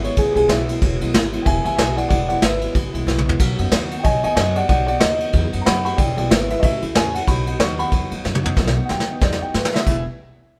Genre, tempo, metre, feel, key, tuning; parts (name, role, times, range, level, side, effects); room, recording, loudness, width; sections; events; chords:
rockabilly; 186 BPM; 4/4; swing 59% on 8ths; E major; A4 = 442 Hz
dark upright piano; melody; 0.0-10.0 s; G4 to C#6; -24 LUFS; equal
picked steel-string acoustic guitar; accompaniment; 0.0-10.0 s; E2 to G#4; -29 LUFS; equal
upright bass; bass; 0.0-10.0 s; E1 to G#2; -26 LUFS; equal
vintage brush drum kit; drums; 0.0-10.0 s; crash cymbal, kick drum, ride cymbal, snare drum, splash cymbal, toms; -22 LUFS; equal
moderate stone room reverb, RT60 1.1 s; band playing live in one room; -19 LUFS; mono
0.0-8.6 A section; 8.6-9.9 B section
drum fill 3.1-3.4, 8.2-8.6, 8.6-9.9
0.0 E; 3.4 B; 6.0 E; 6.6 A; 7.3 B; 9.9 E